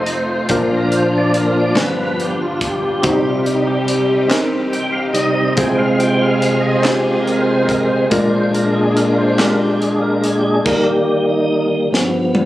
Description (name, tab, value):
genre	slow gospel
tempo	47 BPM (dotted quarters)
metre	6/8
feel	straight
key	unclear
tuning	A4 = 440 Hz
part	warm grand piano	accompaniment	0.0-10.7 s	F1 to C5	-20 LUFS	left 2 dB	none
part	tonewheel organ	sustained chords	0.0-12.5 s	G2 to G5	-15 LUFS	equal	slow rotary speaker, overdrive, chorus vibrato
part	warm studio string section	sustained chords	0.0-10.6 s	C3 to Ab4	-23 LUFS	equal	none
part	crisp fusion drum kit	drums	0.1-12.5 s	crash cymbal, hi-hat, kick drum, snare drum, toms	-22 LUFS	equal	none
part	group handclap	percussion	1.8-9.8 s	none	-27 LUFS	left 1 dB	none
room	moderate concert hall reverb, RT60 2.0 s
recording	recorded on a phone in the room, club reverb, compression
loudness	-14 LUFS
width	side -15 dB against mid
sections	0.0-12.5 A section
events	tonewheel organ solo 0.0-12.5; drum fill 11.9-12.5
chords	0.0 F7; 0.5 Bb; 1.8 G7; 3.0 Cm; 5.6 Fm/C; 8.1 Bb7; 10.6 Eb; 11.9 G7